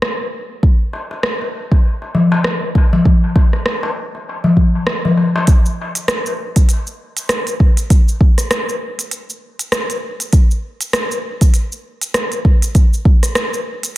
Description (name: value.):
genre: downtempo.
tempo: 99 BPM.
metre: 4/4.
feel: swing 58% on 16ths.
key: none.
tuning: none.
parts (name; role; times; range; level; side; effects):
organic electronic drum kit; drums; 0.0-13.9 s; hi-hat, rim click, shaker; -19 LUFS; equal; none.
electronic kick drum; drums; 0.6-13.2 s; none; -11 LUFS; equal; overdrive.
darbuka; percussion; 0.9-5.5 s; none; -17 LUFS; left 2 dB; dub echo.
room: light reverb, digital ambience.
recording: echo-heavy mix.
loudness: -13 LUFS.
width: side -16 dB against mid.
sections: 0.0-5.5 A section; 5.5-14.0 B section.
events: none.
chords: none.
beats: 0.03 | 0.63 1.24 1.84 2.45 | 3.06 3.66 4.27 4.87 | 5.48 6.09 6.69 7.30 | 7.90 8.51 9.12 9.72 | 10.33 10.94 11.54 12.15 | 12.75 13.36.